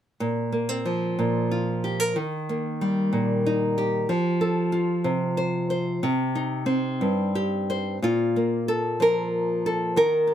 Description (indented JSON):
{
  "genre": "folk, solo fingerstyle acoustic guitar",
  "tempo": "62 BPM (dotted quarters)",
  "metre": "6/8",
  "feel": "rubato",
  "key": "unclear",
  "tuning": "A4 = 439 Hz",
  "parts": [
    { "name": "nylon-string guitar", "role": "solo", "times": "0.2-10.3 s", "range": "G2 to C5", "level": "-22 LUFS", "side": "equal", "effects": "none" }
  ],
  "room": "light reverb",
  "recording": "none",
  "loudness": "-22 LUFS",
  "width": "side -10 dB against mid",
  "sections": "0.2-8.0 A section; 8.0-10.3 B section",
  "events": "none",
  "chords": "0.2 Bbsus2; 2.2 Eb; 4.1 Fadd9; 6.0 Cm; 8.0 Bb5",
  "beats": "| 0.20 1.18 | 2.16 3.13 | 4.10 5.07 | 6.04 7.02 | 8.02 9.01 | 9.98"
}